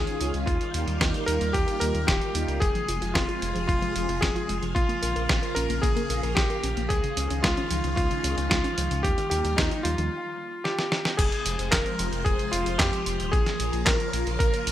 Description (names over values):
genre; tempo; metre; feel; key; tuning
italo disco; 112 BPM; 4/4; straight; F minor; A4 = 440 Hz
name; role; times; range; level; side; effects
clear electric grand piano; melody; 0.0-14.7 s; Eb4 to Bb4; -29 LUFS; left 1 dB; digital delay
phased string machine; sustained chords; 0.0-14.7 s; C3 to C5; -32 LUFS; equal; ensemble chorus, phaser
round analog bass; bass; 0.0-14.7 s; Eb1 to F2; -30 LUFS; equal; none
dusty soul sampler-style drum kit; drums; 0.1-14.7 s; crash cymbal, handclaps, hi-hat, snare drum; -28 LUFS; equal; none
mellow synth brass; stabs; 0.2-2.6 s; G3 to F4; -35 LUFS; right 3 dB; chorus
electronic kick drum; drums; 0.5-14.5 s; none; -27 LUFS; equal; none
warbly dusty pluck; arpeggios; 2.6-10.1 s; Db3 to Bb4; -35 LUFS; left 1 dB; chorus, digital delay
room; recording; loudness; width
moderate plate reverb, RT60 1.4 s; bright 1980s-style digital production; -23 LUFS; side -12 dB against mid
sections
0.0-11.2 A section; 11.2-14.7 B section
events
break 10.1-11.2; drum fill 10.7-11.2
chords
0.5 Ebadd9; 2.6 Fm; 4.8 Bbm; 6.9 Dbadd9; 9.0 Ebadd9; 11.2 Fm; 13.3 Bbm